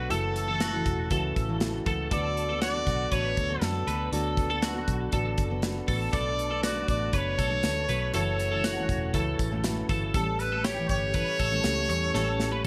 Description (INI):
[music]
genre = jangly indie pop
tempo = 120 BPM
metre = 4/4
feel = straight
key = D major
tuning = A4 = 441 Hz
[part]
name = clear trumpet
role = melody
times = 0.0-12.7 s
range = F#4 to D5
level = -33 LUFS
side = equal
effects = none
[part]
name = picked steel-string acoustic guitar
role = accompaniment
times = 0.0-12.7 s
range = F#2 to A4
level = -38 LUFS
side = equal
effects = none
[part]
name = soft electric-piano-like synth keys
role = accompaniment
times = 0.0-12.7 s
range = C#4 to D5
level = -39 LUFS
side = equal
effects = chorus
[part]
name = twelve-string electric guitar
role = arpeggios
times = 0.0-12.7 s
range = F#4 to C#5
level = -36 LUFS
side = equal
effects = ensemble chorus
[part]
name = vintage muted fingered electric bass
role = bass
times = 0.0-12.7 s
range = E1 to F#2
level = -34 LUFS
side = equal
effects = none
[part]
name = modern studio drum kit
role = drums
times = 0.1-12.7 s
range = hi-hat, kick drum, snare drum, toms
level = -34 LUFS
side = equal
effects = gated reverb
[part]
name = tambourine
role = percussion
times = 6.1-12.7 s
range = none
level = -48 LUFS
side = equal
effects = none
[sound]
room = light reverb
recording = vinyl crackle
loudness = -28 LUFS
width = mono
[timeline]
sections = 0.0-12.7 A section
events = drum fill 12.1-12.7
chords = 0.1 F#m7; 2.1 D6; 8.1 F#m7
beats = | 0.11 0.61 1.11 1.61 | 2.12 2.62 3.12 3.62 | 4.13 4.63 5.13 5.63 | 6.13 6.63 7.14 7.64 | 8.14 8.64 9.14 9.64 | 10.14 10.64 11.14 11.65 | 12.15 12.65